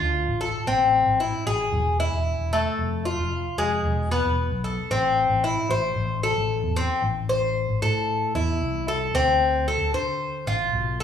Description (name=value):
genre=latin, Cuban son and guajira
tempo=113 BPM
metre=4/4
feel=straight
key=A minor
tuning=A4 = 438 Hz
part: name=Cuban tres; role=arpeggios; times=0.0-11.0 s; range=Ab3 to C5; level=-23 LUFS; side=left 2 dB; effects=none
part: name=fretless electric bass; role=bass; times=0.0-11.0 s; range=E1 to D3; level=-27 LUFS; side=equal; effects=none
room=wet large studio reverb, RT60 1.2 s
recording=band playing live in one room, studio reverb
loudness=-21 LUFS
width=side -8 dB against mid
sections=0.0-7.0 A section; 7.0-11.0 B section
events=none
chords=0.0 Dm; 0.7 Am; 1.7 E; 2.8 Fm; 3.9 E; 4.9 Am; 9.1 Dm7